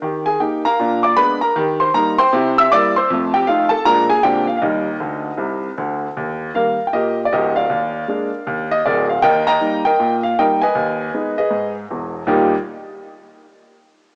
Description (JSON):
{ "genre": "jazz, stride piano", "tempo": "157 BPM", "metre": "4/4", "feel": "swing 64% on 8ths", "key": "Eb major", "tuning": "A4 = 440 Hz", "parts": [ { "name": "clear baby grand piano", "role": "solo", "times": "0.0-12.5 s", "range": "D1 to E6", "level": "-18 LUFS", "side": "equal", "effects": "cassette tape" } ], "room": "moderate lush hall reverb, RT60 2.7 s", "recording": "home recording on cassette, small speaker sound", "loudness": "-18 LUFS", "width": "mono", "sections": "0.0-6.1 A section; 6.1-12.3 B section; 12.3-13.8 C section", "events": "grand piano fill 5.0-6.1", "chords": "0.0 Eb; 0.8 Bb7b9; 1.6 Eb; 2.3 C7; 3.1 F7; 3.8 Bb7; 4.2 Bb9; 4.6 Eb; 7.7 Bb7/Eb; 9.2 Eb; 10.7 Abm/Eb; 12.3 Eb", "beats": "| 0.02 0.40 0.78 1.17 | 1.55 1.93 2.32 2.70 | 3.08 3.46 3.85 4.23 | 4.61 5.00 5.38 5.76 | 6.15 6.53 6.91 7.30 | 7.68 8.06 8.45 8.83 | 9.21 9.60 9.98 10.37 | 10.75 11.13 11.52 11.90 | 12.28" }